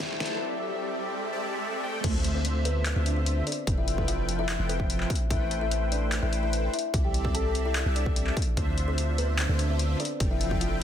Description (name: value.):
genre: future bass.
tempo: 147 BPM.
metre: 4/4.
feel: half-time.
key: unclear.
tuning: A4 = 440 Hz.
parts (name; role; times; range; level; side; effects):
kalimba; melody; 0.0-10.8 s; B3 to A5; -33 LUFS; left 3 dB; vintage 12-bit sampler grit, sidechain pumping, dub echo.
big bright polysynth; riff; 0.0-10.8 s; D3 to A5; -32 LUFS; right 1 dB; analog chorus, sidechain pumping.
long sustained 808-style bass; bass; 0.0-10.8 s; F1 to D2; -28 LUFS; equal; sidechain pumping.
dubstep drum kit; drums; 0.0-10.7 s; crash cymbal, handclaps, hi-hat, snare drum; -33 LUFS; left 2 dB; none.
electronic kick drum; drums; 0.0-10.6 s; none; -29 LUFS; equal; none.
riser; sound effects; 0.1-2.0 s; none; -37 LUFS; right 1 dB; none.
room: light reverb.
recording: dense, heavily limited modern master, high-pass filter.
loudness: -25 LUFS.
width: side -9 dB against mid.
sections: 0.0-2.0 A section; 2.0-10.8 B section.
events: build-up 0.0-2.0; drum fill 0.0-0.4; filter sweep on kalimba 0.0-2.0; riser 0.1-2.0; drop 2.0-10.8.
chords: 0.4 C69; 2.0 Dm9; 3.5 Fmaj9#11; 5.3 Am9; 6.9 C69; 8.6 Dm9; 10.0 Fmaj9#11.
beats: 0.00 | 0.41 0.82 1.22 1.63 | 2.04 2.45 2.86 3.27 | 3.67 4.08 4.49 4.90 | 5.30 5.71 6.12 6.53 | 6.94 7.35 7.75 8.16 | 8.57 8.98 9.39 9.79 | 10.20 10.61.